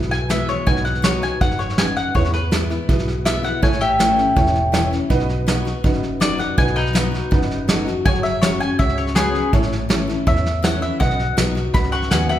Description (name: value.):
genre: honky-tonk and classic country.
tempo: 163 BPM.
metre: 4/4.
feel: straight.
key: unclear.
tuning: A4 = 441 Hz.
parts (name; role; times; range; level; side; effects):
honky-tonk upright piano; accompaniment; 0.0-12.3 s; D#4 to D#5; -27 LUFS; right 3 dB; none.
picked steel-string acoustic guitar; accompaniment; 0.0-12.4 s; E2 to F#4; -24 LUFS; left 4 dB; none.
vintage muted fingered electric bass; bass; 0.0-12.4 s; E1 to E2; -24 LUFS; equal; none.
vintage brush drum kit; drums; 0.0-12.3 s; hi-hat, kick drum, snare drum; -20 LUFS; right 1 dB; none.
mandolin; melody; 0.1-12.4 s; B3 to C#6; -22 LUFS; left 1 dB; none.
room: moderate recital hall reverb, RT60 1.4 s.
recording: recorded in a church or concert hall.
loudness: -16 LUFS.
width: side -12 dB against mid.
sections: 0.0-12.4 A section.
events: mandolin solo 0.0-12.4.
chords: 0.0 E; 0.7 B; 2.2 E; 3.6 A; 5.1 B; 8.1 F#sus2; 9.5 A; 11.0 B.